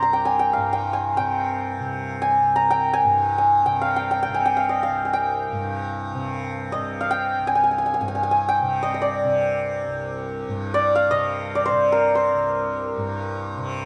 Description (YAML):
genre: indian classical, Hindustani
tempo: free time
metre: none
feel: none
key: C raga darbari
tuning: A4 = 440 Hz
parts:
  - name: santur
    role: melody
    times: 0.0-13.9 s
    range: Bb4 to D6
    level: -23 LUFS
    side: equal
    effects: plate reverb
  - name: tanpura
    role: drone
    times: 0.0-13.9 s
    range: C2 to C3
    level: -31 LUFS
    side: equal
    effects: none
room: moderate small room reverb, RT60 0.5 s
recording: dark, warm production, nothing above 10.4 kHz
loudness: -22 LUFS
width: mono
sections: 0.0-13.9 A section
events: none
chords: none